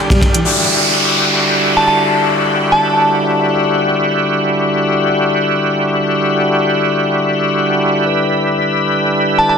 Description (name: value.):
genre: breakbeat.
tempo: 126 BPM.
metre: 4/4.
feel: swing 56% on 16ths.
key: E minor.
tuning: A4 = 440 Hz.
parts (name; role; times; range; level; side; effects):
bright tonewheel organ; sustained chords; 0.0-9.6 s; D3 to B4; -13 LUFS; left 1 dB; overdrive, chorus vibrato, slow rotary speaker, vintage 12-bit sampler grit, sidechain pumping.
downlifter; sound effects; 0.4-4.3 s; none; -16 LUFS; equal; none.
glassy synth bell; melody; 1.8-3.2, 9.4-9.6 s; A5; -14 LUFS; equal; chorus, small speaker sound, vintage 12-bit sampler grit, tape echo.
room: wet plate reverb, RT60 1.9 s, small room ambience.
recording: dense, heavily limited modern master.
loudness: -12 LUFS.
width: side -6 dB against mid.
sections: 0.4-9.6 A section.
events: none.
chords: 0.4 Em9.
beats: | 0.45 0.92 1.40 1.88 | 2.35 2.83 3.30 3.78 | 4.26 4.73 5.21 5.68 | 6.16 6.64 7.11 7.59 | 8.06 8.54 9.02 9.49.